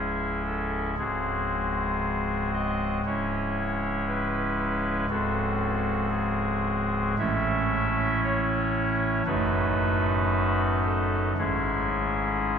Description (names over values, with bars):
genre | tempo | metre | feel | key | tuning
classical, chorale-style piece for pipe organ | 58 BPM | 4/4 | rubato | C# minor | A4 = 439 Hz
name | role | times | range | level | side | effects
pipe organ, soft reed | solo | 0.0-12.6 s | C#1 to E5 | -24 LUFS | equal | none
room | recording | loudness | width
wet cathedral reverb, RT60 5.3 s | recorded in a church or concert hall | -24 LUFS | side -7 dB against mid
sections
0.0-12.6 A section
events
none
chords
0.0 C#m; 1.0 G#7/C#; 3.1 C#m; 5.1 G#7/C#; 7.2 A; 9.3 D#dim/F#; 11.4 C#m/G#